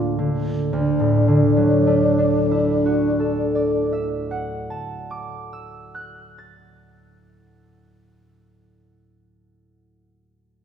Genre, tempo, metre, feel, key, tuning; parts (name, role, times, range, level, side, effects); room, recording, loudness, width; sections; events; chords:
classical, impressionist duo for alto saxophone and harp; 37 BPM (dotted quarters); 12/8; rubato; D major; A4 = 440 Hz
mellow alto saxophone; melody; 0.0-4.1 s; D4 to F4; -21 LUFS; left 1 dB
concert harp; accompaniment; 0.0-8.7 s; D2 to A6; -21 LUFS; right 1 dB
wet scoring stage reverb, RT60 1.6 s; recorded in a church or concert hall; -17 LUFS; side -8 dB against mid
0.7-7.2 A section
0.0 Bbmaj7/D; 0.7 Dadd9